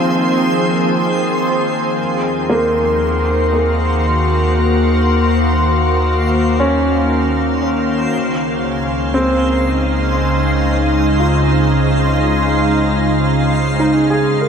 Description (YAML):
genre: ambient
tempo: 58 BPM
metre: 3/4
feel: straight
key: Eb dorian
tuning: A4 = 438 Hz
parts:
  - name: soft additive organ-like pad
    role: sustained chords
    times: 0.0-14.5 s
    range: Db3 to F5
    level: -16 LUFS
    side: equal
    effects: ensemble chorus, built-in reverb
  - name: felt-muted upright piano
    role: arpeggios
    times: 0.0-14.5 s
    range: Bb3 to Bb4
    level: -20 LUFS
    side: equal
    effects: tape echo
  - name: organ-like drone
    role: drone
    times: 0.0-2.1, 14.3-14.5 s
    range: Eb3 to Bb3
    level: -25 LUFS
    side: equal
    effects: ensemble chorus, built-in reverb
  - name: backwards swelling texture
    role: texture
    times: 0.0-14.5 s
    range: C5 to C6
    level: -23 LUFS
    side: equal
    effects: built-in reverb
  - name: warm sub bass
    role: bass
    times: 2.0-14.5 s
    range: Db2 to Eb2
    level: -19 LUFS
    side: equal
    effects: none
room: wet huge ambient reverb, RT60 7.7 s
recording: cassette tape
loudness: -13 LUFS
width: side -7 dB against mid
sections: 0.0-2.0 A section; 2.0-14.5 B section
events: none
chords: 0.0 Fm7; 2.0 Ebm7; 8.1 Dbmaj7